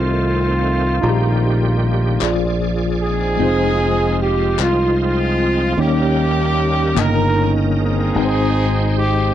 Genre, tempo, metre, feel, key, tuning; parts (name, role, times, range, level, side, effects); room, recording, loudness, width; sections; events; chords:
slow gospel; 50 BPM (dotted quarters); 6/8; straight; Eb major; A4 = 440 Hz
warm horn section; melody; 0.0-9.3 s; Ab3 to Bb4; -20 LUFS; right 1 dB
tine electric piano; accompaniment; 0.0-9.3 s; G2 to Bb5; -21 LUFS; left 2 dB; overdrive, medium stereo tremolo
bright tonewheel organ; sustained chords; 0.0-9.3 s; Db3 to G5; -24 LUFS; right 3 dB; slow rotary speaker, overdrive, chorus vibrato
fingered electric bass; bass; 0.0-9.3 s; F1 to Eb2; -20 LUFS; equal
group handclap; percussion; 2.2-7.3 s; -25 LUFS; left 23 dB
little or no reverb; dry, close 1970s-style studio recording; -15 LUFS; side -11 dB against mid
0.0-3.4 A section; 3.4-9.3 A section
0.0 F7; 1.0 Eb/Bb; 2.2 Bb7; 3.4 Fm7; 5.8 Eb7; 7.0 Eb7/G; 8.2 Abmaj7